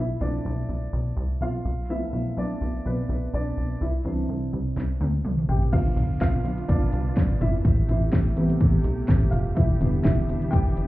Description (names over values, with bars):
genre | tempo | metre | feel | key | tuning
piano-driven pop | 125 BPM | 4/4 | swing 56% on 16ths | unclear | A4 = 440 Hz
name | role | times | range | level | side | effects
dark upright piano | accompaniment | 0.0-10.9 s | C3 to G5 | -29 LUFS | left 1 dB | none
plucky analog bass | bass | 0.0-10.9 s | E1 to D2 | -25 LUFS | equal | none
house drum kit | drums | 4.8-10.9 s | crash cymbal, hi-hat, kick drum, snare drum, toms | -23 LUFS | equal | overdrive
muted studio string section | sustained chords | 5.7-10.9 s | C3 to G4 | -34 LUFS | right 4 dB | none
room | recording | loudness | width
digital ambience | heard muffled through a wall, club ambience, EQ | -22 LUFS | side -17 dB against mid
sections
0.0-5.7 A section; 5.7-10.9 B section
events
upright piano solo 0.0-5.7, 5.7-10.9; drum fill 4.8-5.7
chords
0.0 Bm7b5; 3.8 Cadd9; 5.7 Bdim; 7.7 Am7; 9.6 Em7